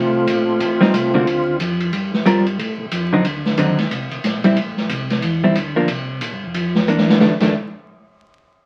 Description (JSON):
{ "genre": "soul jazz organ trio", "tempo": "182 BPM", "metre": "4/4", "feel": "swing 62% on 8ths", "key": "F mixolydian", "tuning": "A4 = 440 Hz", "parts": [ { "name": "overdriven tonewheel organ", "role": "melody", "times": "0.0-1.6 s", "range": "A3 to F4", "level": "-19 LUFS", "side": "equal", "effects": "slow rotary speaker, chorus vibrato" }, { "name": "tonewheel organ", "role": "bass", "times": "0.0-7.5 s", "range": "F1 to A2", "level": "-26 LUFS", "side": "equal", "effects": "chorus vibrato" }, { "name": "swinging big-band drum kit", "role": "drums", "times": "0.3-7.5 s", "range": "crash cymbal, hi-hat, kick drum, ride cymbal, snare drum", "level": "-23 LUFS", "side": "equal", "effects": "none" }, { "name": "hollow-body jazz guitar", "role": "accompaniment", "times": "0.8-7.5 s", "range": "D3 to Bb4", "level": "-19 LUFS", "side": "equal", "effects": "none" } ], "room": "moderate studio reverb, RT60 0.7 s", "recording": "very old 78 rpm record, vinyl crackle", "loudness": "-18 LUFS", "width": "mono", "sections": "0.0-1.9 A section; 1.9-7.2 B section; 7.2-8.5 C section", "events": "drum fill 6.9-7.2", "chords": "0.0 F; 0.6 Am7b5; 1.3 Dm7; 1.9 Gm11; 3.2 D7b9; 4.6 Am; 5.9 C9sus4; 7.2 F6" }